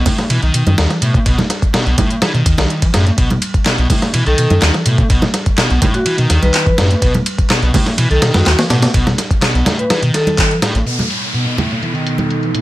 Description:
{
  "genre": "breakbeat, breaks",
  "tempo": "125 BPM",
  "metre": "4/4",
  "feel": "straight",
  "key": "unclear",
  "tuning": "A4 = 440 Hz",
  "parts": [
    { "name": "thick fuzz guitar", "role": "riff", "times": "0.0-12.6 s", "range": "A2 to E3", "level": "-19 LUFS", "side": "equal", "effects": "distortion, low-pass filter, digital delay" },
    { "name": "saturated sub bass", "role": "bass", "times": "0.0-10.8 s", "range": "A1 to B2", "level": "-14 LUFS", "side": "equal", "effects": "none" },
    { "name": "dusty soul sampler-style drum kit", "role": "drums", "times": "0.1-10.7 s", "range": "hi-hat, kick drum, ride cymbal, snare drum", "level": "-16 LUFS", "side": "equal", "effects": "studio ambience" },
    { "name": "garage drum kit", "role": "drums", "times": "0.1-12.6 s", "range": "handclaps, hi-hat", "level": "-21 LUFS", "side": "equal", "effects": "low-pass filter on hats, studio ambience, low-pass filter on snare, low-pass filter on room" },
    { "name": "congas", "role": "percussion", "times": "0.1-12.3 s", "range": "none", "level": "-22 LUFS", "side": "right 1 dB", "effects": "none" },
    { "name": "vibraphone with medium mallets", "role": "melody", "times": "4.3-10.5 s", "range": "F#4 to B4", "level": "-20 LUFS", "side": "equal", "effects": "telephone sound, digital delay" },
    { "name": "dark analog pad", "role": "sustained chords", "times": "11.2-12.6 s", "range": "B2 to A4", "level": "-22 LUFS", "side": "right 2 dB", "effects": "chorus, phaser, sidechain pumping" },
    { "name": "downlifter", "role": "sound effects", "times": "10.9-12.6 s", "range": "none", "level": "-21 LUFS", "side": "equal", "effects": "none" }
  ],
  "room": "light reverb",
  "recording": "none",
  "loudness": "-12 LUFS",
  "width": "side -16 dB against mid",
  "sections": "0.0-10.9 A section; 10.9-12.6 B section",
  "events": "band accent 10.4",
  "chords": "0.0 B7"
}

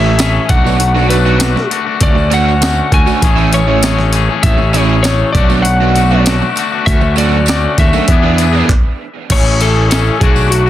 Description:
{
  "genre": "indie rock",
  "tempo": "99 BPM",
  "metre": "4/4",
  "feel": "straight",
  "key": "unclear",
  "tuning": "A4 = 441 Hz",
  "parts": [
    { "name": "lightly driven lead guitar", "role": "melody", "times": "0.0-10.7 s", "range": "F#4 to G#5", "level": "-17 LUFS", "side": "left 1 dB", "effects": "none" },
    { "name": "tonewheel organ", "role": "sustained chords", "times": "0.0-10.7 s", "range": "G#4 to E6", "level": "-26 LUFS", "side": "right 1 dB", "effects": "none" },
    { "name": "overdriven electric guitar", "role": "riff", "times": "0.0-8.7 s", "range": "D3 to G#4", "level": "-19 LUFS", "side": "right 12 dB", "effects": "ensemble chorus, tape echo" },
    { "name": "twangy electric guitar", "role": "riff", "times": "0.0-10.7 s", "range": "E3 to G#4", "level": "-18 LUFS", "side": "left 9 dB", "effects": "none" },
    { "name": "fuzz picked electric bass", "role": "bass", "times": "0.0-10.7 s", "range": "A1 to E2", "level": "-13 LUFS", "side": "equal", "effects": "overdrive" },
    { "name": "tambourine", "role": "percussion", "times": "0.1-10.7 s", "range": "none", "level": "-30 LUFS", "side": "right 15 dB", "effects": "none" },
    { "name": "breakbeat sampler-style drum kit", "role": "drums", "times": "0.2-10.7 s", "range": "crash cymbal, handclaps, hi-hat, kick drum, snare drum, tambourine", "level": "-14 LUFS", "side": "equal", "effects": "none" }
  ],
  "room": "light reverb",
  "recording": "dense, heavily limited modern master",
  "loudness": "-9 LUFS",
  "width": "side -12 dB against mid",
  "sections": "0.0-9.3 A section; 9.3-10.7 A section",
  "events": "stop 8.7-9.3",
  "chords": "0.5 Bm7; 2.0 Dmaj7; 3.2 Amaj7; 5.4 Bm7; 6.9 Dmaj7; 8.1 E7; 9.3 Amaj7"
}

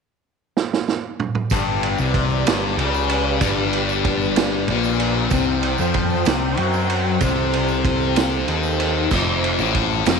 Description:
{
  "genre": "psychedelic rock",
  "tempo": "63 BPM (dotted quarters)",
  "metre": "6/8",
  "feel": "straight",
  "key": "G mixolydian",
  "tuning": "A4 = 440 Hz",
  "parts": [
    { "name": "vintage drum kit", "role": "drums", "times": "0.6-10.2 s", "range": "crash cymbal, kick drum, ride cymbal, snare drum, toms", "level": "-23 LUFS", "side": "right 6 dB", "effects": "none" },
    { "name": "rich studio string section", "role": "sustained chords", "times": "1.5-10.2 s", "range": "C4 to G5", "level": "-26 LUFS", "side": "right 10 dB", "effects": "none" },
    { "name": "thick fuzz guitar", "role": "riff", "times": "1.5-10.2 s", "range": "F2 to F#3", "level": "-21 LUFS", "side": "left 14 dB", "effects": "distortion, phaser" },
    { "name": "growling picked electric bass", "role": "bass", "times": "1.5-10.2 s", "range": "F1 to F#2", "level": "-24 LUFS", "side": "right 1 dB", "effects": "overdrive" },
    { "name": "tambourine", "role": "percussion", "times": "1.5-10.2 s", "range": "none", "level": "-40 LUFS", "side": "right 16 dB", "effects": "none" }
  ],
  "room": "light reverb",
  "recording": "1960s-style stereo with parts hard left and right",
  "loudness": "-17 LUFS",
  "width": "side -5 dB against mid",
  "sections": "0.0-1.5 A section; 1.5-10.2 B section",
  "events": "drum fill 0.6-1.5",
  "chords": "0.0 N.C.; 1.5 G; 5.3 C5; 9.1 F5"
}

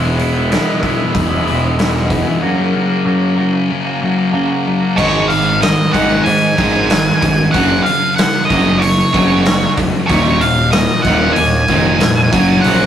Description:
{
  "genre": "quiet-loud alternative rock",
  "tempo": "94 BPM",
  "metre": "4/4",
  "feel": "straight",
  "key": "unclear",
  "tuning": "A4 = 440 Hz",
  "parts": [
    { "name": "twangy electric guitar", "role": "arpeggios", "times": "0.0-12.9 s", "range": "Eb2 to Gb4", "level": "-20 LUFS", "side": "right 2 dB", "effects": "phaser" },
    { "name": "thick fuzz guitar", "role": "riff", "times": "0.0-12.9 s", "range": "Eb2 to Ab3", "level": "-17 LUFS", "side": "left 3 dB", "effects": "distortion" },
    { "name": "fuzz picked electric bass", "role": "bass", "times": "0.0-12.9 s", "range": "Eb1 to Ab2", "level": "-19 LUFS", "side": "equal", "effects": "overdrive" },
    { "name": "raw garage drum kit", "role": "drums", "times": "0.2-12.8 s", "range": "crash cymbal, hi-hat, kick drum, snare drum", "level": "-18 LUFS", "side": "equal", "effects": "none" },
    { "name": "octave-fuzz lead guitar", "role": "melody", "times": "5.0-12.9 s", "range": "Db5 to Ab5", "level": "-16 LUFS", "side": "equal", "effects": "distortion" },
    { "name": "tight distorted guitar", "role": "riff", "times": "5.0-12.9 s", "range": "Eb2 to Ab3", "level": "-19 LUFS", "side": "right 6 dB", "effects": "distortion" }
  ],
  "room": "moderate stone room reverb, RT60 1.2 s",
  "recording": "rough rehearsal-room recording, tube saturation",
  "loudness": "-11 LUFS",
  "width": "side -10 dB against mid",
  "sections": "0.0-5.0 A section; 5.0-12.9 B section",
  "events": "none",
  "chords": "0.0 E; 2.4 Gb; 5.0 Ab5; 7.5 Gb5; 10.1 Ebsus2; 12.3 Gb"
}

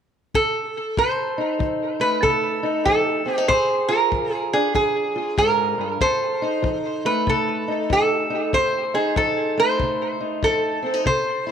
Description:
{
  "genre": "acoustic country blues, solo or duo",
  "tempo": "95 BPM",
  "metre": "4/4",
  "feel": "swing 63% on 8ths",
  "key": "F mixolydian",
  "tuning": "A4 = 439 Hz",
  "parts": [
    { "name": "kick drum", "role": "drums", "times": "0.3-11.2 s", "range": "none", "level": "-28 LUFS", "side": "left 3 dB", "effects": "none" },
    { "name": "lap resonator guitar", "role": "melody", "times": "0.4-11.5 s", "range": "Ab4 to C5", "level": "-20 LUFS", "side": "right 1 dB", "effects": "tape echo" },
    { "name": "fingerpicked steel-string acoustic guitar", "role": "accompaniment", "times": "1.0-11.5 s", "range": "F2 to A4", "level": "-25 LUFS", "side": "equal", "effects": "none" }
  ],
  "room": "moderate plate reverb, RT60 2.0 s",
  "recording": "1960s-style stereo",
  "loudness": "-19 LUFS",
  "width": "side -8 dB against mid",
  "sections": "1.0-11.5 A section",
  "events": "none",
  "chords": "0.0 N.C.; 1.0 F7; 3.5 Bb7; 6.0 F7"
}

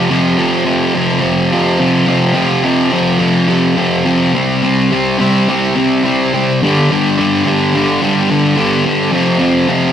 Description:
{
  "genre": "rock",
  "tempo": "106 BPM",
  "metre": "4/4",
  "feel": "straight",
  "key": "unclear",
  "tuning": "A4 = 440 Hz",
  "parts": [
    { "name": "thick fuzz guitar", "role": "solo", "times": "0.0-9.9 s", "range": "F2 to C4", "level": "-11 LUFS", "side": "equal", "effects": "distortion" }
  ],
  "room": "moderate studio reverb, RT60 0.6 s",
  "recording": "rough rehearsal-room recording, warm saturation",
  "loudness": "-11 LUFS",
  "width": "side -9 dB against mid",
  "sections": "0.1-9.9 A section",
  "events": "none",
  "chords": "0.1 F5; 4.3 C5; 6.6 G5; 9.1 F5"
}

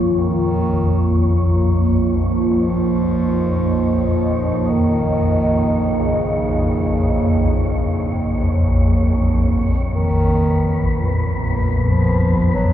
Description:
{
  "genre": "dark ambient drone",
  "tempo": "46 BPM",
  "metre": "4/4",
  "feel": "straight",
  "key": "Bb phrygian",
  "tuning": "A4 = 439 Hz",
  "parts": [
    { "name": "deep dark ambient pad", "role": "sustained chords", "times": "0.0-12.7 s", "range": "Bb2 to F5", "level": "-19 LUFS", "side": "right 1 dB", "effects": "chorus, built-in reverb" },
    { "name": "gamelan-type bronze metallophone", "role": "arpeggios", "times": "0.0-4.1 s", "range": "none", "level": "barely audible", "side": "none", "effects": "none" },
    { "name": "swarming drone", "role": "drone", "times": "0.0-12.7 s", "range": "Bb1 to F2", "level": "-19 LUFS", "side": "left 1 dB", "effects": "built-in reverb" },
    { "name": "wind-like tuned noise texture", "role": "texture", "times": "0.0-12.7 s", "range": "B4 to Db5", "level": "-30 LUFS", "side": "equal", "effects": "built-in reverb" },
    { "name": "mellow bass clarinet", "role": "melody", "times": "0.1-12.7 s", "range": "Db3 to F#3", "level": "-23 LUFS", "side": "equal", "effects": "tape echo" }
  ],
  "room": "wet huge ambient reverb, RT60 7.4 s",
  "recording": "dark, warm production",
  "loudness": "-15 LUFS",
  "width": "side -11 dB against mid",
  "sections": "0.0-12.7 A section",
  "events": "fade-in on synth texture 0.0-12.7",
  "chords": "0.0 Bbm; 9.9 B/Bb"
}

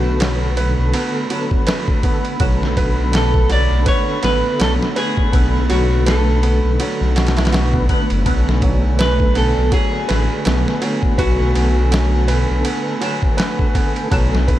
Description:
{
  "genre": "trip hop",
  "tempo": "82 BPM",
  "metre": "4/4",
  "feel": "swing 57% on 16ths",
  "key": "B dorian",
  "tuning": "A4 = 441 Hz",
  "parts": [
    { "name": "clean electric guitar", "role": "melody", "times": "0.0-12.2 s", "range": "F#4 to D5", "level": "-24 LUFS", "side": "equal", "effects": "dub echo" },
    { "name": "percussive tonewheel organ", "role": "accompaniment", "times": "0.0-14.6 s", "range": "D3 to B4", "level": "-25 LUFS", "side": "equal", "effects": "chorus vibrato, slow rotary speaker, tremolo, tape echo" },
    { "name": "dark analog pad", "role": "sustained chords", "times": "0.0-14.6 s", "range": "A3 to B5", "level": "-27 LUFS", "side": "equal", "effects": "chorus" },
    { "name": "felt-muted upright piano", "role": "arpeggios", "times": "0.0-14.6 s", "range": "F#3 to B4", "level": "-24 LUFS", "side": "right 3 dB", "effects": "tape echo" },
    { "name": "dark detuned saw bass", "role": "bass", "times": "0.0-14.6 s", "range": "F#1 to B1", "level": "-17 LUFS", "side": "equal", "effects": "none" },
    { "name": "flickering grainy texture", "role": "texture", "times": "0.1-14.6 s", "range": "A3 to B4", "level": "-31 LUFS", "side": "left 1 dB", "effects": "none" },
    { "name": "boom bap sampler-style drum kit", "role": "drums", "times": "0.2-14.6 s", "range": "kick drum, ride cymbal, snare drum", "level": "-20 LUFS", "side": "equal", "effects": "none" }
  ],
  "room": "little or no reverb",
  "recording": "none",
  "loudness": "-14 LUFS",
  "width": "side -13 dB against mid",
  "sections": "0.0-14.6 A section",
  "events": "none",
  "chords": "0.0 Bm7"
}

